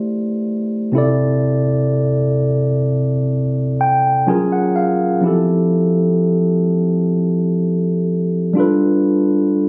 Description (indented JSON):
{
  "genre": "R&B",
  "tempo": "63 BPM",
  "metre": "4/4",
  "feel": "straight",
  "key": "unclear",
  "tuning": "A4 = 440 Hz",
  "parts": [
    { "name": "mellow tine electric piano", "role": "solo", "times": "0.0-9.7 s", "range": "C3 to G#5", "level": "-17 LUFS", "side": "equal", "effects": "none" }
  ],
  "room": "light reverb, digital ambience",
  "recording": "recorded on a phone in the room, studio reverb, nothing above 10.8 kHz",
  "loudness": "-17 LUFS",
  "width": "mono",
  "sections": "0.0-9.7 A section",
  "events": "tine electric piano fill 3.3-5.2",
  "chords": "0.0 Am9; 1.0 C6; 4.3 F#maj9; 5.2 Fmaj9; 8.6 G7",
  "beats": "0.47 | 1.43 2.38 3.33 4.28 | 5.24 6.19 7.14 8.09 | 9.05"
}